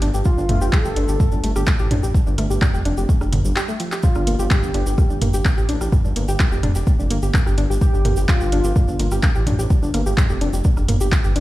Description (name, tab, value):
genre	melodic techno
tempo	127 BPM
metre	4/4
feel	straight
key	G minor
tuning	A4 = 440 Hz
part	soft round pluck	arpeggios	0.0-11.4 s	D3 to G4	-26 LUFS	equal	chorus, sidechain pumping, dub echo
part	dark detuned saw bass	bass	0.0-11.4 s	F1 to A1	-21 LUFS	equal	sidechain pumping
part	deep house drum kit	drums	0.0-11.4 s	handclaps, hi-hat, rim click, toms	-24 LUFS	equal	small room ambience, sidechain pumping on hats, sidechain pumping on toms
part	tube shaker	percussion	0.1-11.3 s	none	-37 LUFS	right 3 dB	none
part	wide unison lead	melody	0.3-9.1 s	F4 to A4	-27 LUFS	equal	ping-pong delay
part	electronic kick drum	drums	0.3-11.2 s	none	-17 LUFS	equal	small room ambience
room	little or no reverb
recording	played on a big sound system in a bare room, stone room reverb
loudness	-16 LUFS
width	side -16 dB against mid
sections	0.0-11.4 A section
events	break 3.6-4.0; drum fill 3.6-4.0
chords	0.0 Dm; 4.0 Gm